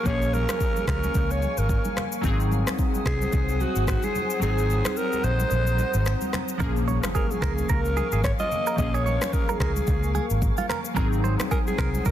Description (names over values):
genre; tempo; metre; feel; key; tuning
afrobeats; 110 BPM; 4/4; swing 58% on 16ths; Bb minor; A4 = 441 Hz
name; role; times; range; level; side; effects
breathy alto saxophone; melody; 0.0-12.1 s; Gb4 to Eb5; -29 LUFS; equal; ping-pong delay
glassy digital keys; accompaniment; 0.0-12.1 s; F3 to Ab4; -31 LUFS; left 2 dB; chorus
glassy FM pad; sustained chords; 0.0-12.1 s; Bb4 to Eb6; -34 LUFS; equal; ensemble chorus, built-in reverb
vintage muted fingered electric bass; bass; 0.1-12.1 s; Ab1 to Db2; -25 LUFS; equal; none
afro-pop drum kit; drums; 0.1-12.1 s; finger snaps, kick drum, rim click, shaker; -27 LUFS; equal; soft clipping on snare
congas; percussion; 0.3-12.1 s; none; -36 LUFS; right 2 dB; none
direct-recorded clean electric guitar; riff; 6.6-12.1 s; F4 to Db5; -32 LUFS; right 8 dB; phaser, ping-pong delay
impact; sound effects; 6.6-8.8 s; none; -36 LUFS; equal; none
room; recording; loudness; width
digital ambience; dense, heavily limited modern master; -22 LUFS; side -11 dB against mid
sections
0.0-6.6 A section; 6.6-12.1 B section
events
kick muted 4.4-6.6; impact 6.6-8.8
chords
0.0 Bbm7; 2.2 Ab7; 6.6 Bbm7; 11.0 Ab7